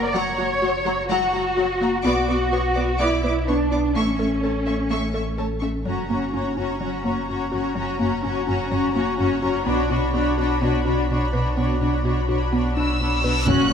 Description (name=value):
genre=cinematic, hybrid orchestral and electronic film score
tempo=126 BPM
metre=4/4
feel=straight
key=B harmonic minor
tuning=A4 = 440 Hz
part: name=mallet-like synth pluck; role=arpeggios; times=0.0-13.6 s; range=F#3 to B4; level=-28 LUFS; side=equal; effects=chorus, phaser, tape echo
part: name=pure sine sub bass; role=bass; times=0.0-13.7 s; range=F#1 to B1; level=-27 LUFS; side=equal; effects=none
part: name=warm symphonic cello section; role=bass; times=0.0-13.7 s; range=F#2 to D5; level=-25 LUFS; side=right 1 dB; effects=none
part: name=warm symphonic violin section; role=second line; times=0.1-13.7 s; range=A#4 to D6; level=-28 LUFS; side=left 3 dB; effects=none
part: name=rich symphonic viola section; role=accompaniment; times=0.1-13.7 s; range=F#3 to F#4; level=-26 LUFS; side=left 2 dB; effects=none
part: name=reverse cymbal and impact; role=sound effects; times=13.2-13.7 s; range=none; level=-29 LUFS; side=left 1 dB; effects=none
part: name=dark studio violin section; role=melody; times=12.8-13.7 s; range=E6 to F#6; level=-24 LUFS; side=equal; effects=none
part: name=dark French horn section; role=sustained chords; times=13.5-13.7 s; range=A#3 to C#4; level=-28 LUFS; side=left 4 dB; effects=none
part: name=warm symphonic double bass section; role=bass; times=13.5-13.6 s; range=F#1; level=-24 LUFS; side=right 4 dB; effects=none
room=moderate scoring stage reverb, RT60 1.8 s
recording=none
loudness=-20 LUFS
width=side -7 dB against mid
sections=0.0-5.9 A section; 5.9-13.5 B section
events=reverse cymbal 13.2-13.5; impact 13.5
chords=0.0 F#; 2.0 Bm; 4.0 A; 5.9 F#; 9.7 Bmadd9